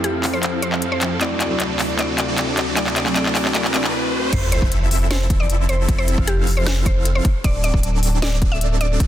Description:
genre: future bass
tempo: 154 BPM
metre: 4/4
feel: half-time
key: unclear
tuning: A4 = 441 Hz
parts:
  - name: mallet-like synth pluck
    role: melody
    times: 0.0-9.1 s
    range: G4 to E5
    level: -26 LUFS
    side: equal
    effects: chorus, sidechain pumping, digital delay
  - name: glassy digital keys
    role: accompaniment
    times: 0.0-4.3 s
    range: A3 to G4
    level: -27 LUFS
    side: left 2 dB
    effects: chorus, sidechain pumping, dub echo
  - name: airy breathy pad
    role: sustained chords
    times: 0.0-3.9 s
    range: D2 to A4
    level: -32 LUFS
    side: equal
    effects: chorus, sidechain pumping
  - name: supersaw chords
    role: riff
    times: 0.0-9.1 s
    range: F3 to F5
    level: -24 LUFS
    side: right 1 dB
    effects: phaser, sidechain pumping, low-pass filter
  - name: trap drum kit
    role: drums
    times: 0.0-9.1 s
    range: crash cymbal, handclaps, hi-hat, snare drum, woodblock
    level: -24 LUFS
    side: equal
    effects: none
  - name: riser and sub drop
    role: sound effects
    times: 0.7-5.9 s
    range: none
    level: -29 LUFS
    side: equal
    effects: none
  - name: saturated sub bass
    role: bass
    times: 4.3-9.1 s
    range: D1 to F1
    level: -19 LUFS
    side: equal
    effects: sidechain pumping
  - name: electronic kick drum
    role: drums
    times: 4.3-9.1 s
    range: none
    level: -18 LUFS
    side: equal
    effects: none
room: light reverb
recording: dense, heavily limited modern master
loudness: -17 LUFS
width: side -12 dB against mid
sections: 0.0-4.3 A section; 4.3-9.1 B section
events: build-up 0.0-4.3; drum fill 0.0-3.9; filter sweep on supersaw synth 0.0-4.3; drop 4.3-9.1; impact 4.3-5.9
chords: 0.0 Fmaj7; 1.2 D7; 4.3 Fmaj7; 7.4 D7

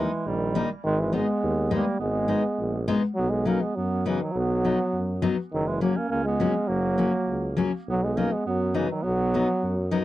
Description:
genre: alpine folk, alpine dance band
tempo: 103 BPM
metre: 2/4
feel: straight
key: G# harmonic minor, B major from 3.2 s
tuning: A4 = 440 Hz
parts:
  - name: warm euphonium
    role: melody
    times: 0.0-9.9 s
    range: C#3 to A#3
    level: -26 LUFS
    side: equal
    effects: none
  - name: warm clarinet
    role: second line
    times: 0.0-9.9 s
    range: E3 to C#4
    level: -31 LUFS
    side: right 6 dB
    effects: tape echo
  - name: fingerpicked steel-string acoustic guitar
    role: accompaniment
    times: 0.0-10.0 s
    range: F#3 to D#4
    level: -25 LUFS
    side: left 4 dB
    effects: none
  - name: warm tuba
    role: bass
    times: 0.0-10.0 s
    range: F#1 to F#2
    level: -30 LUFS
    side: equal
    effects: none
room: little or no reverb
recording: dry, close 1970s-style studio recording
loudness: -23 LUFS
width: side -14 dB against mid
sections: 0.0-3.2 A section; 3.2-10.0 B section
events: none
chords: 0.0 D#; 0.8 G#m; 3.2 B; 5.5 F#; 7.9 B

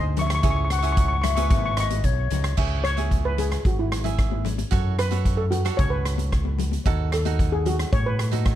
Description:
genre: calypso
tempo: 112 BPM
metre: 4/4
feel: straight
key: C# minor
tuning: A4 = 441 Hz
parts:
  - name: steel pan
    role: melody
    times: 0.0-8.2 s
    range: E4 to C#6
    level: -28 LUFS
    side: left 1 dB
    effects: tape echo
  - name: cavaquinho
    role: accompaniment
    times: 0.0-8.6 s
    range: D#4 to E5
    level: -32 LUFS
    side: right 15 dB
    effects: none
  - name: overdriven fingered electric bass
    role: bass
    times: 0.0-8.6 s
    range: G#1 to A2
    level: -24 LUFS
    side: equal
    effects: none
  - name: street-band drum kit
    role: drums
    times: 0.2-8.6 s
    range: crash cymbal, hi-hat, kick drum, rim click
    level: -25 LUFS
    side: equal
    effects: none
  - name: congas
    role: percussion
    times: 0.2-8.4 s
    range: none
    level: -33 LUFS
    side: left 16 dB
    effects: none
  - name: hollow wooden flute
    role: second line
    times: 0.7-2.6 s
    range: C#5 to F#5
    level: -31 LUFS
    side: left 13 dB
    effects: tape echo
room: little or no reverb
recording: dark, warm production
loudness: -20 LUFS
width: side -12 dB against mid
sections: 0.0-2.6 A section; 2.6-8.6 B section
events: steel pan solo 2.6-8.6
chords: 0.4 C#m; 4.7 F#m; 6.9 D#dim

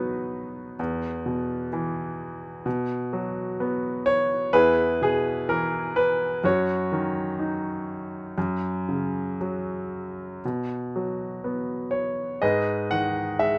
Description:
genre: classical, lyrical solo piano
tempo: 57-66 BPM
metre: 4/4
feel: rubato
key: B major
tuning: A4 = 440 Hz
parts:
  - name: bright grand piano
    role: solo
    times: 0.0-13.6 s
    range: E2 to F#5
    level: -26 LUFS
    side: equal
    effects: none
room: light reverb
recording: none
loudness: -27 LUFS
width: mono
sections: 0.0-13.6 A section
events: none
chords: 0.0 B; 0.8 E5; 2.7 B5; 4.5 E; 6.4 D#m7/F#; 8.4 F#5; 10.4 B5; 12.4 G#m

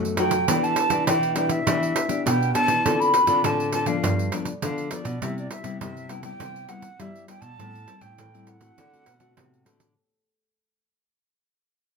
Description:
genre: samba and choro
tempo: 101 BPM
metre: 4/4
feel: straight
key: unclear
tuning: A4 = 438 Hz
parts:
  - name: nylon-string guitar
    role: accompaniment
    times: 0.0-9.9 s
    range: F#2 to A4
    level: -29 LUFS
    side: left 6 dB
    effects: none
  - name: nylon-string guitar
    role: bass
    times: 0.0-9.9 s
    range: G2 to A3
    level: -28 LUFS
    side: equal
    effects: none
  - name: pandeiro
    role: percussion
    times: 0.0-10.0 s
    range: none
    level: -28 LUFS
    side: right 5 dB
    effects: none
  - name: breathy mellow jazz flute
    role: melody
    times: 0.2-9.7 s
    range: D5 to B5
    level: -24 LUFS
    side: equal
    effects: none
room: moderate small room reverb, RT60 0.5 s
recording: minimal, uncompressed stereo recording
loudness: -20 LUFS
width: side -4 dB against mid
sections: 0.0-10.0 A section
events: fade-out 0.0-10.0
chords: 0.5 Em7; 2.9 Dm7; 4.0 G7; 5.2 Cmaj7; 7.6 Am7; 8.8 D7

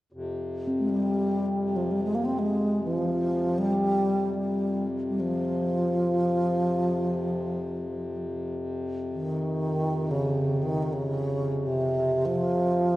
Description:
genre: world meditative, free-time meditation music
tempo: free time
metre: none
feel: none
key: unclear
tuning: A4 = 440 Hz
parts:
  - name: hand-pumped harmonium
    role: drone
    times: 0.1-13.0 s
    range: F2 to C3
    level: -32 LUFS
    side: left 1 dB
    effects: none
  - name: bronze singing bowl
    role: texture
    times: 0.7-10.3 s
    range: C4 to F4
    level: -36 LUFS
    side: left 2 dB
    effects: none
  - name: breathy bright bass flute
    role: melody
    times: 0.8-13.0 s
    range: C3 to C4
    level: -25 LUFS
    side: equal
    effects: none
room: wet concert hall reverb, RT60 2.2 s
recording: worn, warbling old tape, cassette tape, warbly pitch drift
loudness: -25 LUFS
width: side -16 dB against mid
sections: 0.1-13.0 A section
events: none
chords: none

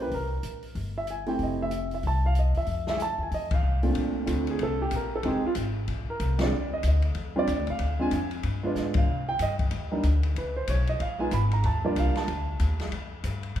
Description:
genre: jazz piano trio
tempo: 187 BPM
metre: 4/4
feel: swing 61% on 8ths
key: F major, Bb major from 4.0 s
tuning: A4 = 440 Hz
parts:
  - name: warm baby grand piano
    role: melody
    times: 0.0-12.9 s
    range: Bb2 to Cb6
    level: -28 LUFS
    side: right 2 dB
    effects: none
  - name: upright bass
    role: bass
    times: 0.0-13.6 s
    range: F1 to C3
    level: -28 LUFS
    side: left 1 dB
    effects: none
  - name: open jazz drum kit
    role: drums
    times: 0.1-13.6 s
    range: hi-hat, kick drum, ride cymbal, snare drum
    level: -33 LUFS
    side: left 2 dB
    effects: none
room: moderate recital hall reverb, RT60 1.6 s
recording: recorded in a church or concert hall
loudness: -25 LUFS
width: side -11 dB against mid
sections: 0.0-4.0 A section; 4.0-13.6 B section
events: band accent 3.5, 6.4, 8.9; drum fill 8.8-9.1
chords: 0.1 C7(no3); 1.4 Fmaj7; 3.3 F5; 4.0 Bbmaj7; 5.2 Fm7; 5.9 Bbadd9; 6.5 Ebmaj7sus2; 7.8 Ddim; 8.4 G7b9; 9.1 Cmadd9; 10.4 Db7; 11.6 Ebmaj9; 12.9 Fsus2

